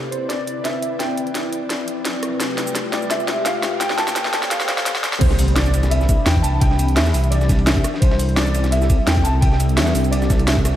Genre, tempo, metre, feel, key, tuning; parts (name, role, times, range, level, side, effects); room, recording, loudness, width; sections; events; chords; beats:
liquid drum and bass; 171 BPM; 4/4; swing 53% on 16ths; C major; A4 = 440 Hz
glassy FM pad; sustained chords; 0.0-10.8 s; C3 to B5; -25 LUFS; left 2 dB; ensemble chorus, built-in reverb, vintage 12-bit sampler grit, sidechain pumping
riser and impact; sound effects; 0.0-6.6 s; -32 LUFS; equal
dark grand piano; melody; 0.1-10.7 s; C5 to A5; -25 LUFS; equal; analog chorus, diffuse ambient delay
drum and bass drum kit; drums; 0.1-10.7 s; cabasa, crash cymbal, hi-hat, rim click, snare drum; -23 LUFS; equal; overdrive, high-pass filter on hats, high-pass filter on snare, high-pass filter on perc, high-pass filter on cymbals, high-pass filter on room
swelling detuned saw bass; bass; 5.2-10.7 s; C2 to E2; -18 LUFS; equal
dusty soul sampler-style drum kit; drums; 5.2-10.7 s; hi-hat, ride cymbal, snare drum; -29 LUFS; right 1 dB; high-pass filter on cymbals, high-pass filter on snare, high-pass filter on hats
electronic kick drum; drums; 5.2-10.6 s; -18 LUFS; equal; overdrive
moderate lush hall reverb, RT60 1.8 s; dreamy mix soaked in reverb, high-pass filter; -16 LUFS; side -12 dB against mid
0.0-5.2 A section; 5.2-10.8 B section
build-up 0.0-5.2; drum fill 0.0-5.2; riser 0.0-5.2; filter sweep 0.0-5.2; drop 5.2-10.8; impact 5.2-6.6
0.0 Cmaj9; 2.2 Fmaj9#11/C; 3.8 Bbmaj13/C; 5.2 Cmaj9; 7.8 C69
0.30 0.65 | 1.00 1.35 1.70 2.06 | 2.41 2.76 3.11 3.46 | 3.81 4.16 4.51 4.86 | 5.21 5.56 5.91 6.26 | 6.62 6.97 7.32 7.67 | 8.02 8.37 8.72 9.07 | 9.42 9.77 10.12 10.48